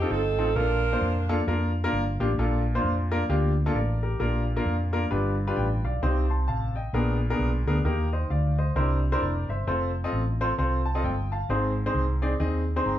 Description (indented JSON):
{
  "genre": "uptempo gospel",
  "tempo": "132 BPM",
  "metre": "4/4",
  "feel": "swing 60% on 8ths",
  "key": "Bb major",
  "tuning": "A4 = 440 Hz",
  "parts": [
    { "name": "clear saxophone section", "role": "melody", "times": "0.0-1.4 s", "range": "C4 to Bb4", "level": "-27 LUFS", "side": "right 5 dB", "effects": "none" },
    { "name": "clear baby grand piano", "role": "accompaniment", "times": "0.0-13.0 s", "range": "G2 to C6", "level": "-27 LUFS", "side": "left 1 dB", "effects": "none" },
    { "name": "hollow-body short-scale fingered electric bass", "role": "bass", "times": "0.0-13.0 s", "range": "F1 to F2", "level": "-26 LUFS", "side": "equal", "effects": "none" }
  ],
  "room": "wet large studio reverb, RT60 0.9 s",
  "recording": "band playing live in one room",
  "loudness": "-23 LUFS",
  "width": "side -12 dB against mid",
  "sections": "0.0-2.4 A section; 2.4-4.2 B section; 4.2-13.0 C section",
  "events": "grand piano fill 10.6-11.5",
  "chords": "0.0 F7; 0.6 Bbmaj7; 4.2 Bb; 5.1 G7; 6.0 Cm; 6.9 Bb7b9; 7.8 Eb; 8.8 C9; 9.7 F; 11.5 Ab"
}